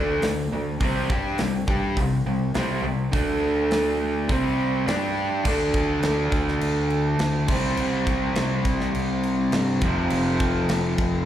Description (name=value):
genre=hard rock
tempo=103 BPM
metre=4/4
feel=straight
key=D minor from 5.5 s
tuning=A4 = 440 Hz
part: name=overdriven electric guitar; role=riff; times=0.0-11.3 s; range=F2 to G4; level=-23 LUFS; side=equal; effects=slapback echo
part: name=fuzz fingered electric bass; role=bass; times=0.0-11.2 s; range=F1 to G2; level=-29 LUFS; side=equal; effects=overdrive
part: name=tight metal drum kit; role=drums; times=0.2-11.1 s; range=crash cymbal, hi-hat, kick drum, snare drum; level=-28 LUFS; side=equal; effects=none
room=studio reverb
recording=live gig heard through the venue's PA, club reverb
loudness=-21 LUFS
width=side -11 dB against mid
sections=0.0-5.5 A section; 5.5-11.3 B section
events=none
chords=0.0 D5; 0.8 C5; 3.1 D5; 4.3 C5; 4.9 G5; 5.5 D5; 7.5 C5; 9.8 F5